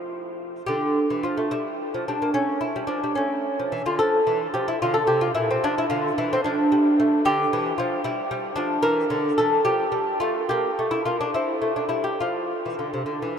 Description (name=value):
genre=classical, baroque-style dance for lute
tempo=68-76 BPM (dotted quarters)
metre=6/8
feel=rubato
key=D minor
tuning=A4 = 440 Hz
part: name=lute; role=solo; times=0.0-13.4 s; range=Bb2 to Bb4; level=-21 LUFS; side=equal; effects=none
room=wet huge ambient reverb, RT60 9.5 s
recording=in a vast, echoing space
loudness=-21 LUFS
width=side -7 dB against mid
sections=0.7-13.4 A section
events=none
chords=0.0 F; 0.7 Dm; 1.5 Edim/G; 2.3 A7; 4.0 Fmaj9; 4.8 Bbmaj9#11; 5.6 Dm; 7.2 Dmadd11; 8.0 Em7; 8.8 Bbmaj7#11; 9.7 F; 10.5 Gm; 11.3 C; 12.2 N.C.